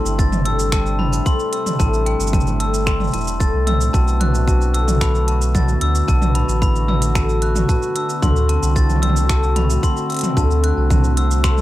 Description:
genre	folktronica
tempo	112 BPM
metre	4/4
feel	straight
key	A dorian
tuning	A4 = 440 Hz
part	glockenspiel with hard plastic mallets	second line	0.0-11.6 s	G5 to A6	-24 LUFS	left 2 dB	digital delay
part	warbly tape-like pad	sustained chords	0.0-11.6 s	C3 to F#4	-26 LUFS	equal	chorus, built-in reverb
part	hammered dulcimer	arpeggios	0.0-11.6 s	A2 to C5	-25 LUFS	left 2 dB	digital delay
part	warm sub bass	bass	0.1-11.6 s	E1 to D2	-18 LUFS	equal	none
part	organic electronic drum kit	drums	0.1-11.6 s	finger snaps, hi-hat, shaker, toms	-24 LUFS	right 1 dB	none
part	electronic kick drum	drums	0.2-11.5 s	none	-18 LUFS	equal	none
room	light reverb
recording	none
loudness	-15 LUFS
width	side -15 dB against mid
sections	0.0-11.6 A section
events	none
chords	0.0 Am7; 3.9 Bm7; 8.2 D7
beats	0.19 0.72 1.26 | 1.80 2.33 2.87 3.40 | 3.94 4.47 5.01 5.55 | 6.08 6.62 7.15 7.69 | 8.22 8.76 9.30 9.83 | 10.37 10.90 11.44

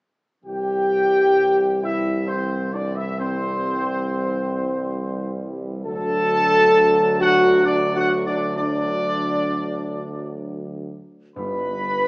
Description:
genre	classical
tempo	66 BPM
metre	3/4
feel	straight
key	C major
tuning	A4 = 440 Hz
part	clear trumpet section	melody	0.4-12.1 s	C5 to B5	-23 LUFS	equal	none
part	warm trombone section	sustained chords	0.4-12.1 s	D3 to G3	-31 LUFS	equal	none
part	warm French horn section	sustained chords	0.5-12.1 s	C4 to B4	-20 LUFS	equal	none
part	clear tuba	bass	0.5-12.1 s	G1 to D2	-28 LUFS	right 1 dB	none
part	timpani	percussion	11.4-12.1 s	G2	-36 LUFS	equal	none
room	wet recital hall reverb, RT60 1.8 s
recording	small speaker sound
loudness	-18 LUFS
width	side -26 dB against mid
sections	0.5-12.1 A section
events	none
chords	0.5 C; 5.9 D; 11.4 G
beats	| 0.46 1.38 2.29 | 3.19 4.09 4.97 | 5.86 6.75 7.66 | 8.58 9.51 10.43 | 11.36

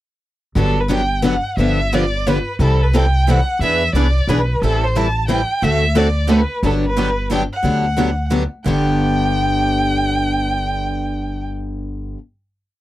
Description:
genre	acoustic string swing (jazz manouche)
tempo	178 BPM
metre	3/4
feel	swing 61% on 8ths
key	G major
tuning	A4 = 440 Hz
part	warm violin	melody	0.6-11.4 s	A4 to A5	-21 LUFS	right 1 dB	none
part	picked steel-string acoustic guitar	accompaniment	0.6-12.2 s	G2 to A4	-20 LUFS	left 3 dB	none
part	picked steel-string acoustic guitar	accompaniment	0.6-12.2 s	G2 to B4	-24 LUFS	right 6 dB	none
part	upright bass	bass	0.6-12.1 s	G1 to E2	-19 LUFS	equal	none
room	light reverb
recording	dry, close 1970s-style studio recording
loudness	-15 LUFS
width	side -15 dB against mid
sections	0.6-8.7 A section; 8.7-10.7 final chord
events	none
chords	0.6 Gmaj7; 1.6 G7; 2.6 C6; 3.6 E7; 4.6 Am7; 5.6 D7; 6.6 Gmaj7; 8.7 G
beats	| 0.56 0.90 1.24 | 1.57 1.91 2.25 | 2.59 2.93 3.27 | 3.60 3.94 4.28 | 4.62 4.95 5.29 | 5.63 5.96 6.30 | 6.63 6.97 7.31 | 7.64 7.98 8.32 | 8.65 8.99 9.33 | 9.66 10.00 10.34

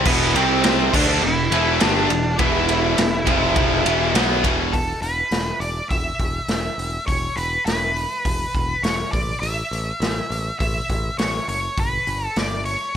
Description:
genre	quiet-loud alternative rock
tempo	102 BPM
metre	4/4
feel	straight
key	E minor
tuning	A4 = 440 Hz
part	distorted electric guitar	riff	0.0-4.7 s	E2 to D4	-23 LUFS	left 1 dB	overdrive
part	tight distorted guitar	riff	0.0-4.7 s	E2 to D4	-22 LUFS	equal	distortion
part	modern bright picked electric bass	bass	0.0-12.8 s	E1 to D2	-26 LUFS	equal	none
part	octave-fuzz lead guitar	melody	0.1-13.0 s	B3 to E5	-24 LUFS	right 1 dB	distortion
part	raw garage drum kit	drums	0.1-12.8 s	crash cymbal, hi-hat, kick drum, ride cymbal, snare drum	-23 LUFS	equal	none
room	small room ambience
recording	none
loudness	-18 LUFS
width	side -9 dB against mid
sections	0.0-4.7 A section; 4.7-13.0 B section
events	none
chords	0.4 C5; 0.9 Em; 4.7 E5; 9.1 A5; 11.8 G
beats	| 0.06 0.64 1.23 1.81 | 2.39 2.98 3.56 4.14 | 4.73 5.31 5.90 6.49 | 7.07 7.66 8.25 8.84 | 9.42 10.01 10.60 11.18 | 11.77 12.36 12.95

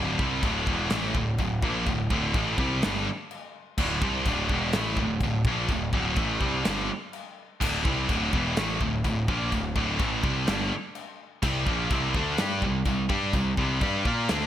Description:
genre	heavy metal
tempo	126 BPM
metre	4/4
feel	straight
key	D minor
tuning	A4 = 440 Hz
part	scooped high-gain guitar	riff	0.0-14.5 s	D2 to Bb4	-26 LUFS	equal	distortion
part	fuzz picked electric bass	bass	0.0-14.5 s	D1 to Bb2	-31 LUFS	equal	overdrive
part	modern studio drum kit	drums	0.2-14.4 s	china cymbal, crash cymbal, kick drum, snare drum	-30 LUFS	equal	gated reverb
room	light reverb, studio ambience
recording	bright 1980s-style digital production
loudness	-24 LUFS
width	side -11 dB against mid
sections	0.0-14.5 A section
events	none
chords	0.0 D5; 11.4 C5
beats	0.43 0.91 1.39 | 1.87 2.35 2.83 3.30 | 3.78 4.26 4.74 5.22 | 5.69 6.17 6.65 7.13 | 7.61 8.08 8.56 9.04 | 9.52 9.99 10.47 10.95 | 11.43 11.91 12.39 12.86 | 13.34 13.82 14.30

